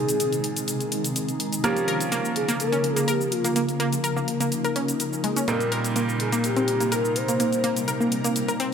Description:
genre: progressive house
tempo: 125 BPM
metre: 4/4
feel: straight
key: Bb dorian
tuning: A4 = 442 Hz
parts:
  - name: expressive synth lead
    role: melody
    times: 0.0-7.9 s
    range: F4 to C5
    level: -28 LUFS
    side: left 1 dB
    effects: analog chorus, dub echo
  - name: shimmering ambient pad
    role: sustained chords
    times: 0.0-8.7 s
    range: C3 to Bb4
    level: -28 LUFS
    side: left 1 dB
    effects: chorus, built-in reverb
  - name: bright baby grand piano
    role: stabs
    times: 0.0-8.7 s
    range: Bb2 to C5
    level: -30 LUFS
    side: right 2 dB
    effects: dub echo
  - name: electronic hi-hat and shaker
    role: drums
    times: 0.1-8.7 s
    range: none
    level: -30 LUFS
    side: left 2 dB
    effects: studio reverb
  - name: analog pluck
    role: arpeggios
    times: 1.6-8.7 s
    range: Ab3 to Bb4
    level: -26 LUFS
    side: right 1 dB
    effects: chorus, dub echo
room: light reverb, digital ambience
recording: none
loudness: -22 LUFS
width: side -7 dB against mid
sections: 0.0-8.7 A section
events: none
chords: 0.0 Ab/Bb; 1.6 Bbm; 5.5 Cm7/Bb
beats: 0.20 0.68 1.16 | 1.64 2.12 2.60 3.08 | 3.56 4.04 4.52 5.00 | 5.48 5.96 6.44 6.92 | 7.40 7.88 8.36

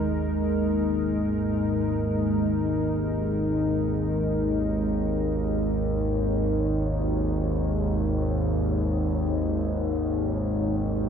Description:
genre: dark ambient drone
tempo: free time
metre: none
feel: none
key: unclear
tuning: A4 = 440 Hz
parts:
  - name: deep dark ambient pad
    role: sustained chords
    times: 0.0-11.1 s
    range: G#3 to C#5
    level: -27 LUFS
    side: equal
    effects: chorus, built-in reverb
  - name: analog drone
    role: drone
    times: 0.0-11.1 s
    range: G#1 to D#2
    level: -26 LUFS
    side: equal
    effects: chorus
room: wet huge ambient reverb, RT60 8.2 s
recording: none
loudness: -23 LUFS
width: side -7 dB against mid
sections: 0.0-11.1 A section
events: none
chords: 0.0 G#sus2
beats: free time

